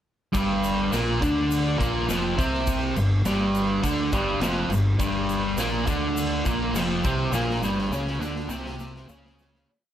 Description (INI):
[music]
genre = garage rock duo or trio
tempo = 103 BPM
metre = 4/4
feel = straight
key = unclear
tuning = A4 = 440 Hz
[part]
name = fuzz guitar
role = riff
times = 0.3-9.7 s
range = F2 to D4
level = -23 LUFS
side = equal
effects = distortion
[part]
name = fuzz fingered electric bass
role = bass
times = 0.3-9.6 s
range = F1 to D2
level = -31 LUFS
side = equal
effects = overdrive
[part]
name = raw garage drum kit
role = drums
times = 0.3-9.7 s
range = crash cymbal, kick drum, snare drum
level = -30 LUFS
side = equal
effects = none
[part]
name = egg shaker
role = percussion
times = 0.3-9.5 s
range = none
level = -40 LUFS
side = left 7 dB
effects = none
[sound]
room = light reverb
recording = none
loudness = -22 LUFS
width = side -10 dB against mid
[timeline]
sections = 0.3-9.7 riff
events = fade-out 7.3-9.7; drum fill 7.3-9.7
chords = 0.3 G5